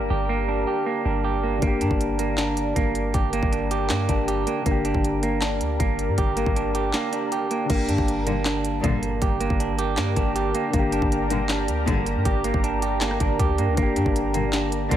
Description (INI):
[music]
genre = hip hop, trap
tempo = 158 BPM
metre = 4/4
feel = half-time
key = G minor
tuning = A4 = 440 Hz
[part]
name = dark baby grand piano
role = accompaniment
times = 0.0-15.0 s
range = D3 to G4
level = -30 LUFS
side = left 4 dB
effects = low-pass filter
[part]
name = deep dark ambient pad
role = sustained chords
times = 0.0-15.0 s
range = G4 to Bb5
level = -30 LUFS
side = left 2 dB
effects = chorus, built-in reverb
[part]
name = semi-hollow electric guitar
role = arpeggios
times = 0.0-15.0 s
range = Bb3 to G4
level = -26 LUFS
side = right 6 dB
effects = low-pass filter, digital delay
[part]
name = warm 808-style bass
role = bass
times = 0.0-15.0 s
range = G1 to G2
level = -27 LUFS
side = equal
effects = none
[part]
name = trap drum kit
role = drums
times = 1.6-15.0 s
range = crash cymbal, handclaps, hi-hat, kick drum, rim click, snare drum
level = -26 LUFS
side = equal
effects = none
[part]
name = warm studio string section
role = stabs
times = 8.3-15.0 s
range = Bb1 to D3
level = -29 LUFS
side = left 5 dB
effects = none
[sound]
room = light reverb, digital ambience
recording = none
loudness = -21 LUFS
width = side -11 dB against mid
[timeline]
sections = 0.0-7.7 A section; 7.7-15.0 B section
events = break 6.9-7.7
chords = 0.0 Gm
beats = | 0.10 0.48 0.86 1.24 | 1.62 2.00 2.38 2.76 | 3.14 3.52 3.90 4.28 | 4.66 5.04 5.42 5.80 | 6.18 6.56 6.94 7.32 | 7.70 8.08 8.46 8.84 | 9.22 9.60 9.98 10.36 | 10.74 11.12 11.49 11.88 | 12.26 12.63 13.01 13.39 | 13.77 14.15 14.53 14.91